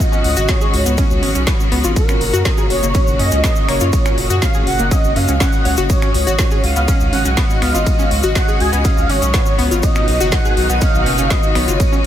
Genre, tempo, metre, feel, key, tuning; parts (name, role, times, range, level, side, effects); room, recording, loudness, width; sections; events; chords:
progressive house; 122 BPM; 4/4; straight; Db mixolydian; A4 = 440 Hz
expressive synth lead; melody; 0.0-12.1 s; Bb4 to Ab5; -21 LUFS; right 1 dB; ensemble chorus, sidechain pumping, tape echo
rich symphonic string section; sustained chords; 0.0-12.1 s; Ab2 to Gb4; -22 LUFS; left 1 dB; sidechain pumping
deep house drum kit; drums; 0.0-11.9 s; finger snaps, hi-hat, ride cymbal, snare drum; -24 LUFS; equal; sidechain pumping on hats, sidechain pumping on cymbals
electronic kick drum; drums; 0.0-11.9 s; -16 LUFS; equal
cabasa; percussion; 0.0-12.0 s; -29 LUFS; left 2 dB
backwards swelling texture; texture; 0.4-12.1 s; Eb5 to Eb6; -29 LUFS; left 2 dB; built-in reverb, analog chorus, sidechain pumping
analog pluck; arpeggios; 0.1-12.0 s; Bb3 to Db5; -22 LUFS; left 1 dB; chorus, sidechain pumping, tape echo
saturated sub bass; bass; 0.2-11.8 s; Gb1 to Gb2; -19 LUFS; equal; sidechain pumping
light reverb, digital ambience; -13 LUFS; side -11 dB against mid
0.0-12.1 A section
0.0 Dbsus4; 2.0 Gb; 5.9 Dbsus4; 9.8 Cb